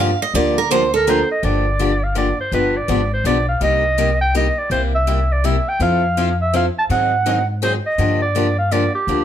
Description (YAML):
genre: acoustic string swing (jazz manouche)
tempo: 165 BPM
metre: 3/4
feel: swing 62% on 8ths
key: G minor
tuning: A4 = 441 Hz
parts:
  - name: picked steel-string acoustic guitar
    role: second line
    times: 0.0-1.2 s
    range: A4 to F5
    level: -18 LUFS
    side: right 6 dB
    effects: none
  - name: picked acoustic archtop guitar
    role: accompaniment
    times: 0.0-9.2 s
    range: C3 to A4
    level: -21 LUFS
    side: left 3 dB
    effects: none
  - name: upright bass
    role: bass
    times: 0.0-9.2 s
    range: G1 to Ab2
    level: -20 LUFS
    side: equal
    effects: none
  - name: breathy clarinet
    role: melody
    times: 1.0-9.2 s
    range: G4 to A5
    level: -19 LUFS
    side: right 1 dB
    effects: plate reverb
room: light reverb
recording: none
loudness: -15 LUFS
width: side -10 dB against mid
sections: 0.0-1.4 A section; 1.4-9.2 B section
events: steel-string acoustic guitar solo 0.0-1.4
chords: 0.0 Gm7; 2.5 G7b9; 3.6 Cm7; 4.7 C7; 5.8 Fmaj7; 6.9 Ab7; 8.0 Gm7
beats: | 0.34 0.71 1.07 | 1.43 1.80 2.16 | 2.52 2.89 3.25 | 3.62 3.98 4.34 | 4.71 5.07 5.44 | 5.80 6.17 6.53 | 6.89 7.26 7.62 | 7.99 8.35 8.71 | 9.08